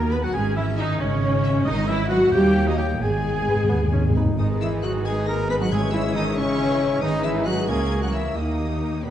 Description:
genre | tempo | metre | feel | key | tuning
quick classical-period movement for symphony orchestra | 90 BPM (dotted quarters) | 6/8 | straight | G# minor | A4 = 439 Hz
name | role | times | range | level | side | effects
clear clarinet | second line | 0.0-9.1 s | G#3 to C#5 | -34 LUFS | left 2 dB | none
mellow hollow silver concert flute | second line | 0.0-9.1 s | B4 to B5 | -34 LUFS | left 1 dB | none
warm oboe | second line | 0.0-9.1 s | C#5 to B5 | -34 LUFS | equal | none
clear studio viola section | accompaniment | 0.0-9.1 s | D#3 to B4 | -27 LUFS | equal | none
mellow French horn section | sustained chords | 0.0-9.1 s | B3 to B4 | -28 LUFS | left 3 dB | none
dark studio double bass section | bass | 0.0-9.1 s | G#1 to D#2 | -25 LUFS | right 1 dB | none
rich studio cello section | bass | 0.0-9.1 s | B2 to B3 | -27 LUFS | right 2 dB | none
rich studio violin section | melody | 0.1-9.1 s | B4 to B6 | -36 LUFS | left 4 dB | none
rich studio violin section | second line | 0.1-9.1 s | E4 to B5 | -36 LUFS | left 2 dB | none
timpani | percussion | 3.0-6.3 s | G#2 | -25 LUFS | left 1 dB | none
warm bassoon | accompaniment | 3.7-9.1 s | G3 to D#4 | -32 LUFS | left 1 dB | none
mellow trumpet | stabs | 4.4-9.1 s | B3 to B4 | -31 LUFS | right 1 dB | none
room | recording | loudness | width
moderate scoring stage reverb, RT60 2.0 s | dark, warm production, nothing above 10.8 kHz | -19 LUFS | side -11 dB against mid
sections
0.0-4.4 A section; 4.4-9.1 A section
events
timpani fill 3.0-4.4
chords
0.3 C#m/G#; 1.7 G#5; 2.3 D#; 3.0 G#m; 5.7 C#m/G#; 7.0 G#m; 7.7 A#dim/C#; 8.4 D#

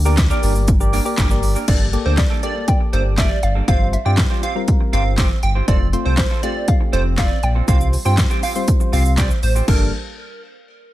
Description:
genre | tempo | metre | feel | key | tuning
dance-pop | 120 BPM | 4/4 | straight | G dorian | A4 = 440 Hz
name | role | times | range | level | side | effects
hollow square pluck | melody | 0.0-9.1 s | C5 to G5 | -28 LUFS | left 2 dB | chorus
sub bass with octave | bass | 0.0-9.9 s | F1 to G2 | -18 LUFS | equal | sidechain pumping
soft electric-piano-like synth keys | accompaniment | 0.1-9.9 s | G3 to D5 | -26 LUFS | left 2 dB | chorus, sidechain pumping
electric guitar through a small old amp | riff | 0.1-9.8 s | G3 to C5 | -28 LUFS | right 4 dB | wide subtle chorus
deep house drum kit | drums | 0.1-9.8 s | crash cymbal, handclaps, hi-hat, kick drum, shaker, snare drum | -18 LUFS | equal | none
plucky unison lead | melody | 1.7-9.9 s | Bb4 to G5 | -26 LUFS | right 3 dB | sidechain pumping, digital delay
room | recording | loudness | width
digital ambience | none | -15 LUFS | side -15 dB against mid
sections
0.0-1.7 A section; 1.7-9.7 B section; 9.7-10.9 C section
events
none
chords
0.0 Gm; 1.7 Gmadd9; 3.7 Csus4/G; 5.7 F; 7.7 Csus4; 9.7 Gmadd9

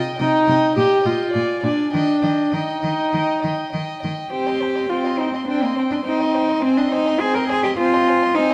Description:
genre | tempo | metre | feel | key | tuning
quick classical-period movement for string quartet | 104 BPM | 4/4 | straight | Eb major, C minor from 4.3 s | A4 = 440 Hz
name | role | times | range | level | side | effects
dark violin | melody | 0.0-8.5 s | G5 to C6 | -32 LUFS | equal | none
rich violin | second line | 0.0-8.5 s | C5 to Eb5 | -32 LUFS | equal | none
warm viola | accompaniment | 0.2-8.5 s | C4 to G4 | -23 LUFS | equal | none
rich cello | bass | 0.2-8.5 s | Bb2 to Bb4 | -23 LUFS | equal | none
room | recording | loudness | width
moderate scoring stage reverb, RT60 1.8 s | dark, warm production | -20 LUFS | mono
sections
0.0-4.3 A section; 4.3-8.5 B section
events
none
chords
0.0 Cm; 0.8 Eb/Bb; 1.3 Bb7; 1.9 Eb; 4.3 Cm; 6.6 Ab/C

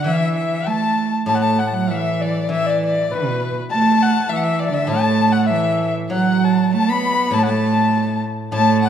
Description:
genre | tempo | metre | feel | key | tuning
chinese traditional, Chinese chamber ensemble | 100 BPM | 2/4 | rubato | A zhi mode | A4 = 440 Hz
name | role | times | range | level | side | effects
dark erhu | melody | 0.0-8.9 s | B4 to B5 | -21 LUFS | left 3 dB | none
clear violin | second line | 0.0-8.9 s | B4 to B5 | -24 LUFS | left 5 dB | none
rich cello | second line | 0.0-8.9 s | B2 to B3 | -19 LUFS | right 5 dB | none
steel-string zither | accompaniment | 0.0-8.9 s | A2 to F#3 | -25 LUFS | left 2 dB | none
room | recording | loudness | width
moderate scoring stage reverb, RT60 2.0 s | dark, warm production | -16 LUFS | side -9 dB against mid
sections
0.0-1.3 A section; 1.3-8.9 B section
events
none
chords
none

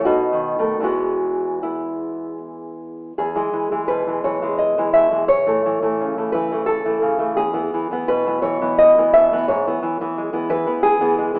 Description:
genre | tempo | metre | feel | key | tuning
romantic piece for solo classical guitar | 73-88 BPM | 3/4 | rubato | E major | A4 = 441 Hz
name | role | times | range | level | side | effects
nylon-string guitar | solo | 0.0-11.4 s | E2 to E5 | -17 LUFS | equal | none
room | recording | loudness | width
moderate lush hall reverb, RT60 2.5 s | rough home demo mix, telephone sound | -16 LUFS | side -32 dB against mid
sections
0.0-3.2 A section; 3.2-11.4 B section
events
none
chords
0.1 B7; 0.8 E; 5.3 A/E; 7.4 E; 9.5 E/G#

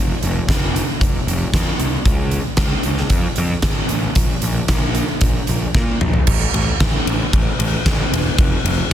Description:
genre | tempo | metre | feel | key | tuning
quiet-loud alternative rock | 114 BPM | 4/4 | straight | unclear | A4 = 439 Hz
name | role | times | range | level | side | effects
fuzz picked electric bass | bass | 0.0-8.8 s | E1 to Bb2 | -21 LUFS | equal | overdrive
huge arena drum kit | drums | 0.2-8.8 s | crash cymbal, hi-hat, kick drum, ride cymbal, snare drum, toms | -17 LUFS | equal | none
room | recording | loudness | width
little or no reverb | dense, heavily limited modern master | -15 LUFS | side -11 dB against mid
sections
0.0-6.3 A section; 6.3-8.9 B section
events
drum fill 5.7-6.3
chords
none

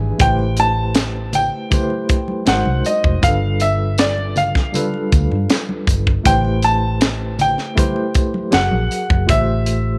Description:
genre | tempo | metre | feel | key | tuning
lush 1970s-style soul | 79 BPM | 4/4 | straight | A minor | A4 = 440 Hz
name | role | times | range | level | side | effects
mellow tine electric piano | accompaniment | 0.0-10.0 s | E3 to G#5 | -25 LUFS | equal | medium tremolo
vintage muted fingered electric bass | bass | 0.0-10.0 s | F1 to G2 | -22 LUFS | equal | none
clear baby grand piano | melody | 0.2-10.0 s | D5 to A5 | -22 LUFS | equal | none
tight funk drum kit | drums | 0.2-9.8 s | hi-hat, kick drum, snare drum | -20 LUFS | equal | none
congas | percussion | 0.2-9.5 s | none | -30 LUFS | equal | none
tambourine | percussion | 0.6-9.8 s | none | -38 LUFS | equal | none
room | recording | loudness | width
light reverb, small room ambience | none | -17 LUFS | mono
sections
0.2-10.0 A section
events
tine electric piano fill 0.0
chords
0.2 Am7; 2.5 G#9; 3.2 G7; 6.3 Am7; 8.5 F#; 9.3 Fmaj7/A

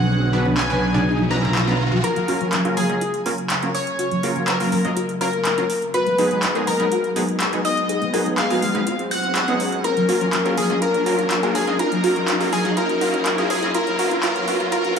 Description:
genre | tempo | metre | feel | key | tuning
progressive house | 123 BPM | 4/4 | straight | F# major | A4 = 439 Hz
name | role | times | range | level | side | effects
plucky unison lead | melody | 0.0-15.0 s | G#4 to A#5 | -23 LUFS | left 2 dB | dub echo
lush unison pad | sustained chords | 0.0-15.0 s | C#3 to E#5 | -28 LUFS | equal | chorus
fat analog bass | bass | 0.0-2.0 s | B1 | -24 LUFS | right 1 dB | none
riser | sound effects | 0.0-15.0 s | none | -29 LUFS | equal | none
backwards swelling texture | texture | 0.0-2.0 s | G#4 to G#5 | -36 LUFS | left 3 dB | none
supersaw stab | stabs | 0.3-15.0 s | F#3 to D#5 | -25 LUFS | equal | low-pass filter, dub echo
congas | percussion | 0.5-2.0 s | none | -26 LUFS | equal | overdrive
big-room dance drum kit | drums | 0.6-15.0 s | handclaps, hi-hat | -26 LUFS | equal | none
soft round pluck | second line | 2.0-15.0 s | G#5 to F#6 | -33 LUFS | left 1 dB | none
tight sequenced synth | arpeggios | 2.0-15.0 s | F#3 to A#4 | -26 LUFS | equal | chorus, phaser, dub echo
room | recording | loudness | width
wet concert hall reverb, RT60 2.0 s | high-pass filter, small room ambience | -18 LUFS | side -6 dB against mid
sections
0.0-2.0 A section; 2.0-15.0 B section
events
riser 0.0-2.0, 2.0-15.0; build-up 2.0-15.0; filter sweep on synth arpeggio sound 2.0-15.0; filter sweep on supersaw synth 2.0-15.0; filter sweep on analog synth pad 2.0-15.0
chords
0.0 Bmadd9; 2.0 F#maj7; 5.9 G#m7; 9.8 F#maj7; 13.7 Bmadd9

